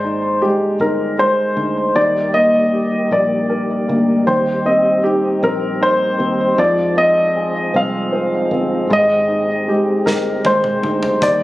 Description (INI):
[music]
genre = six-eight pop ballad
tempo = 52 BPM (dotted quarters)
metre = 6/8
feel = straight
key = unclear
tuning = A4 = 440 Hz
[part]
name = warm baby grand piano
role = melody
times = 0.0-11.4 s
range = G4 to F5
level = -16 LUFS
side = equal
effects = digital delay
[part]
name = warm upright piano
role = accompaniment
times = 0.0-11.4 s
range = Eb3 to C5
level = -20 LUFS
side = equal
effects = none
[part]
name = fingered electric bass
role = bass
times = 0.0-11.4 s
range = G1 to F2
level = -27 LUFS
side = equal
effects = none
[part]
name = tonewheel organ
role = sustained chords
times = 2.0-11.4 s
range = F3 to G4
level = -23 LUFS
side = right 1 dB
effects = overdrive, slow rotary speaker
[part]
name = modern studio drum kit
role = drums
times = 10.1-11.4 s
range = hi-hat, kick drum, snare drum, toms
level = -26 LUFS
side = right 1 dB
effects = none
[sound]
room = light reverb, small room reverb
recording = recorded on a phone in the room, studio ambience, compression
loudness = -14 LUFS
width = side -17 dB against mid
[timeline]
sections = 0.0-11.4 A section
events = drum fill 10.1-11.2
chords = 0.0 Abmaj7; 2.0 Ebmaj7; 4.3 Cm/Eb; 6.6 Fm7; 8.9 Abmaj7